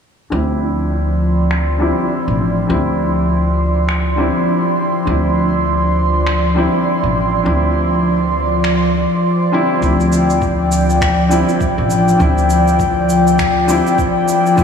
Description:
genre	organic downtempo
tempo	101 BPM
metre	4/4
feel	swing 59% on 16ths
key	D minor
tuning	A4 = 439 Hz
part	felt-muted upright piano	accompaniment	0.3-14.6 s	D3 to E4	-19 LUFS	left 1 dB	sidechain pumping, low-pass filter, tape echo, shimmer reverb
part	airy breathy pad	sustained chords	0.7-14.6 s	F3 to C6	-15 LUFS	equal	chorus, sidechain pumping, shimmer reverb
part	upright bass	bass	0.3-14.6 s	A1 to D2	-18 LUFS	equal	sidechain pumping
part	electronic finger snaps and shaker	drums	1.5-14.6 s	none	-26 LUFS	equal	low-pass filter on snare, low-pass filter on perc, low-pass filter on room
part	electronic kick drum	drums	9.8-14.6 s	none	-20 LUFS	equal	none
room	wet lush hall reverb, RT60 2.5 s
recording	dreamy mix soaked in reverb, small room ambience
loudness	-13 LUFS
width	side -7 dB against mid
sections	0.3-14.6 A section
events	filter sweep on drum 0.3-14.6; filter sweep on felt piano 0.3-14.6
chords	0.3 Dm7

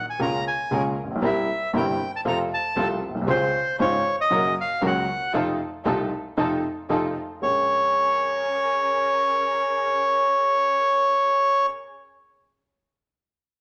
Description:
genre	tango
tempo	116 BPM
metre	4/4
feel	rubato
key	Bb minor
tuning	A4 = 440 Hz
part	bandoneon	melody	0.0-11.7 s	C5 to Bb5	-24 LUFS	equal	none
part	dark baby grand piano	accompaniment	0.2-11.7 s	G1 to Gb4	-28 LUFS	equal	none
part	muted studio string section	stabs	0.2-11.7 s	C4 to C5	-33 LUFS	equal	none
room	wet large studio reverb, RT60 1.2 s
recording	none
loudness	-23 LUFS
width	mono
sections	0.0-7.4 A section; 7.4-11.6 B section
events	none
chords	0.2 Bbm7/Db; 1.2 C7; 2.3 F; 3.3 Dbmaj7; 4.3 Gb; 5.3 F7; 7.4 Bbm7

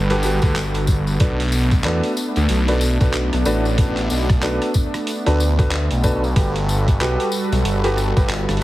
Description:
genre	glitch hop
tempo	93 BPM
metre	4/4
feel	swing 60% on 16ths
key	B minor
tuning	A4 = 444 Hz
part	warm analog pad	sustained chords	0.0-8.6 s	G3 to B4	-26 LUFS	right 1 dB	chorus, vintage 12-bit sampler grit, sidechain pumping
part	phased detuned saw bass	bass	0.0-8.6 s	G1 to E2	-19 LUFS	equal	phaser, tube saturation
part	warm grand piano	stabs	0.1-8.3 s	D4 to B4	-24 LUFS	equal	sidechain pumping, ping-pong delay
part	boom bap sampler-style drum kit	drums	0.1-8.6 s	handclaps, hi-hat, rim click	-29 LUFS	right 1 dB	none
part	tambourine	percussion	0.1-8.6 s	none	-33 LUFS	left 3 dB	none
part	electronic kick drum	drums	0.4-8.3 s	none	-17 LUFS	equal	none
room	digital ambience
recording	heavily compressed radio sound, multiband compression, vinyl crackle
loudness	-16 LUFS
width	side -16 dB against mid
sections	0.0-8.6 A section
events	none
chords	0.0 Gmaj9; 1.2 Bm7; 6.4 Gmaj9

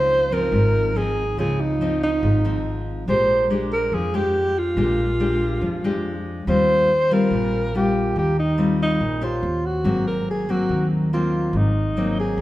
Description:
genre	bossa nova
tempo	142 BPM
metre	4/4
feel	straight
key	Eb major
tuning	A4 = 440 Hz
part	breathy alto saxophone	melody	0.0-12.4 s	Eb4 to C5	-21 LUFS	right 1 dB	none
part	nylon-string guitar	accompaniment	0.0-12.4 s	Ab2 to C5	-23 LUFS	left 2 dB	none
part	upright bass	bass	0.0-12.4 s	Ab1 to F2	-26 LUFS	equal	none
room	moderate recital hall reverb, RT60 1.8 s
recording	recorded in a church or concert hall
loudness	-18 LUFS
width	side -16 dB against mid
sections	0.0-12.4 A section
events	none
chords	0.0 Dbmaj9; 3.1 Bb13; 6.5 Eb69; 9.4 Eb13; 9.8 Ab9

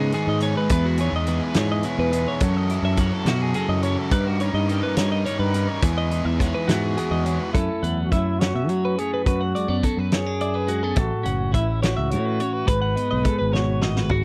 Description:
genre	math rock and midwest emo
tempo	70 BPM (dotted quarters)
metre	6/8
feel	straight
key	unclear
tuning	A4 = 443 Hz
part	twelve-string electric guitar	accompaniment	0.0-14.2 s	E2 to A4	-30 LUFS	equal	phaser
part	twelve-string electric guitar	arpeggios	0.0-14.2 s	F#4 to F#5	-31 LUFS	equal	warbly pitch drift
part	biting overdriven guitar	riff	0.0-7.6 s	F#3 to A#4	-30 LUFS	equal	none
part	growling fingered electric bass	bass	0.0-14.2 s	F#1 to F#3	-26 LUFS	equal	overdrive
part	loose indie drum kit	drums	0.1-14.2 s	hi-hat, kick drum, snare drum, toms	-26 LUFS	equal	none
part	breathy trumpet	melody	6.7-14.1 s	E4 to B4	-30 LUFS	equal	none
room	small room ambience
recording	dry, close 1970s-style studio recording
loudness	-22 LUFS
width	mono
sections	0.0-7.5 A section; 7.5-14.2 B section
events	drum fill 13.5-14.2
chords	0.0 G#m7; 0.7 Emaj9; 2.4 F#m9; 4.1 D#7alt/G; 5.8 Emaj7; 7.5 F#m7; 9.3 D6/F#; 11.0 A69; 12.7 G#m7

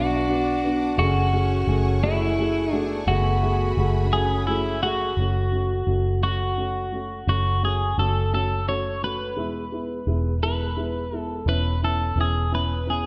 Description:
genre	pop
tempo	57 BPM (dotted quarters)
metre	6/8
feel	straight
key	unclear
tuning	A4 = 440 Hz
part	twelve-string electric guitar	melody	0.0-13.1 s	E4 to C#5	-28 LUFS	equal	spring reverb
part	mellow French horn section	second line	0.0-4.8 s	A3 to D4	-33 LUFS	equal	none
part	dark upright piano	accompaniment	0.0-13.1 s	G#3 to G#4	-31 LUFS	equal	none
part	rich studio string section	sustained chords	0.0-5.2 s	A3 to D6	-39 LUFS	equal	none
part	vintage muted fingered electric bass	bass	0.0-13.1 s	E1 to B1	-27 LUFS	equal	none
room	moderate scoring stage reverb, RT60 1.6 s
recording	none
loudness	-23 LUFS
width	mono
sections	0.0-5.2 A section; 5.2-13.1 B section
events	none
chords	0.0 Bm; 1.0 F#madd9; 5.2 F#m; 9.4 E; 11.5 C#m7/E

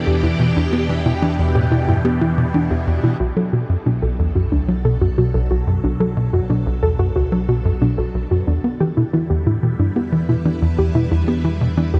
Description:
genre	ambient, sequencer-driven space music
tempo	91 BPM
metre	4/4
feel	straight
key	E minor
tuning	A4 = 440 Hz
part	phased string machine	sustained chords	0.0-12.0 s	B2 to B4	-28 LUFS	equal	ensemble chorus, phaser
part	warbly dusty pluck	arpeggios	0.0-12.0 s	D4 to A4	-26 LUFS	equal	chorus, analog delay
part	tight sequencer bass	riff	0.0-12.0 s	B1 to B3	-20 LUFS	equal	analog delay
part	analog drone	bass	0.0-12.0 s	B1 to E2	-27 LUFS	equal	chorus
room	moderate huge ambient reverb, RT60 8.7 s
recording	dark, warm production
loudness	-18 LUFS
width	mono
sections	0.0-3.2 A section; 3.2-12.0 B section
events	none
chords	0.0 Em7; 3.2 Bm7; 8.5 Em7

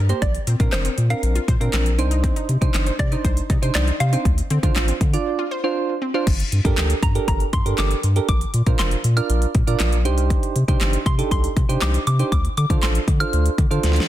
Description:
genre	dance-pop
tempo	119 BPM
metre	4/4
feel	straight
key	G minor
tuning	A4 = 440 Hz
part	mallet-like synth pluck	melody	0.0-14.0 s	C5 to F6	-28 LUFS	equal	chorus, tape echo
part	analog pluck	arpeggios	0.0-6.2 s	Bb3 to C5	-32 LUFS	left 3 dB	chorus, sidechain pumping, tape echo
part	saturated sub bass	bass	0.0-14.0 s	F1 to D3	-20 LUFS	equal	sidechain pumping
part	soft electric-piano-like synth keys	accompaniment	0.1-14.0 s	Bb3 to D5	-25 LUFS	right 5 dB	chorus, sidechain pumping
part	pop drum kit	drums	0.1-14.1 s	crash cymbal, handclaps, hi-hat, kick drum, snare drum	-21 LUFS	equal	none
room	digital ambience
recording	dense, heavily limited modern master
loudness	-17 LUFS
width	side -13 dB against mid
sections	0.0-6.3 A section; 6.3-14.1 A section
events	break 5.3-6.3; drum fill 13.8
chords	0.2 Bbadd9; 2.0 Cmadd9; 4.3 Dm7; 6.3 Gmadd9; 8.3 Bbadd9; 10.1 Cmadd9; 12.3 Dm7

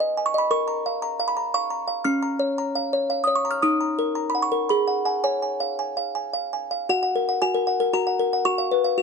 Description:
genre	classical, lullaby for music box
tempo	114 BPM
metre	3/4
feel	straight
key	F# major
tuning	A4 = 440 Hz
part	music box	solo	0.0-9.0 s	C#4 to E#6	-21 LUFS	equal	none
room	light reverb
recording	dark, warm production, nothing above 10.7 kHz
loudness	-21 LUFS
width	side -5 dB against mid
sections	0.0-6.9 A section; 6.9-9.0 B section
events	none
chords	0.5 A#m; 2.1 A#m/C#; 3.6 D#m; 4.7 G#m7; 5.2 C#; 6.9 F#; 8.5 C#7/F#

